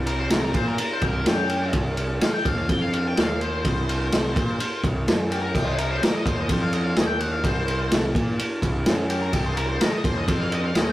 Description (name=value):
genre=blues rock power trio and southern rock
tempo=126 BPM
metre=4/4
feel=straight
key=C minor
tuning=A4 = 440 Hz
part: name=fuzz picked electric bass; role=bass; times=0.0-10.9 s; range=C2 to Bb2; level=-26 LUFS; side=equal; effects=overdrive
part: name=octave-fuzz lead guitar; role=melody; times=0.1-10.9 s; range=G4 to G5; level=-29 LUFS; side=left 2 dB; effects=distortion
part: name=vintage drum kit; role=drums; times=0.1-10.9 s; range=crash cymbal, kick drum, ride cymbal, snare drum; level=-23 LUFS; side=equal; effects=none
room=moderate small room reverb, RT60 0.5 s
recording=rough rehearsal-room recording, warm saturation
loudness=-21 LUFS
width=side -15 dB against mid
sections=0.0-10.9 A section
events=lead electric guitar solo 0.0-10.9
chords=0.0 Cm